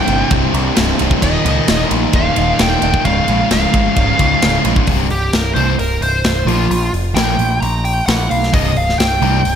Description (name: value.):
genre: hard rock.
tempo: 131 BPM.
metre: 4/4.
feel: straight.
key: C phrygian.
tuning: A4 = 438 Hz.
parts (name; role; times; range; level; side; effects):
bluesy overdriven lead guitar; melody; 0.0-9.6 s; F4 to Bb5; -18 LUFS; equal; distortion, slapback echo.
cranked stack guitar; riff; 0.0-9.4 s; C2 to Bb3; -20 LUFS; left 11 dB; overdrive, slapback echo.
sludgy distorted guitar; riff; 0.0-9.4 s; C2 to Bb3; -20 LUFS; right 9 dB; overdrive, slapback echo.
growling picked electric bass; bass; 0.1-9.6 s; C1 to Db2; -18 LUFS; equal; overdrive.
tight metal drum kit; drums; 0.1-9.6 s; hi-hat, kick drum, ride cymbal, snare drum; -18 LUFS; equal; none.
room: moderate lush hall reverb, RT60 1.8 s, studio reverb.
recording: big arena sound.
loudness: -12 LUFS.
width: side -8 dB against mid.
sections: 0.0-4.9 A section; 4.9-9.6 B section.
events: lead electric guitar solo 4.9-9.6.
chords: 0.0 C5; 1.2 Eb; 3.0 Db; 4.9 C5; 6.5 Bb5; 8.5 C5.